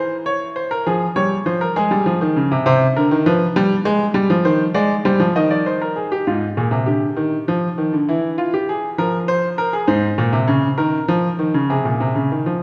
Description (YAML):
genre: classical, baroque-style two-part invention for grand piano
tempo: 66 BPM (dotted quarters)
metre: 6/8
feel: straight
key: F minor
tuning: A4 = 440 Hz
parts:
  - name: clear grand piano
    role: solo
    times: 0.0-12.6 s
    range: Ab2 to Eb5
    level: -18 LUFS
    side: equal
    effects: none
room: wet concert hall reverb, RT60 1.7 s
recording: recorded in a church or concert hall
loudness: -18 LUFS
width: mono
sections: 0.0-6.3 A section; 6.3-12.6 B section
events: none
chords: 0.0 C7/E; 0.9 Fm; 2.7 Cm; 3.6 G7; 4.5 Cm/Eb; 6.3 Bb7/Ab; 7.2 Eb; 8.1 E; 9.0 Fm; 9.9 Bbm7/Ab; 10.8 Eb5; 11.7 Ab